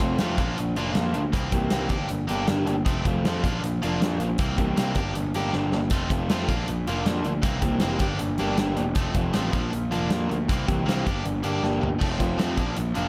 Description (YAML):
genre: indie rock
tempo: 158 BPM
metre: 4/4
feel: straight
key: G dorian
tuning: A4 = 439 Hz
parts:
  - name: cranked stack guitar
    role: riff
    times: 0.0-13.1 s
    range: E3 to G4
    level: -31 LUFS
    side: equal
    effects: overdrive
  - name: crunchy overdriven guitar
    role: riff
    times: 0.0-13.1 s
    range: E3 to G4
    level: -32 LUFS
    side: equal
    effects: subtle chorus
  - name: fuzz picked electric bass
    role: bass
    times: 0.0-13.1 s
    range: E1 to F2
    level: -32 LUFS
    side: equal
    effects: overdrive
  - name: big rock drum kit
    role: drums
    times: 0.0-13.0 s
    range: crash cymbal, hi-hat, kick drum, snare drum, toms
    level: -30 LUFS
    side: equal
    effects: none
room: small room ambience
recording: none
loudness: -25 LUFS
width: mono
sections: 0.0-12.0 A section; 12.0-13.1 A section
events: drum fill 5.5-5.9, 11.6-12.0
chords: 0.4 Bb; 1.3 C5; 1.9 Gm; 2.9 F; 3.4 Bb; 4.4 C5; 5.0 Gm; 5.9 F; 6.5 Bb; 7.4 C7sus4; 8.0 Gm; 9.0 F; 9.5 Bb; 10.5 C5; 11.1 Gm; 12.0 F; 12.6 Bb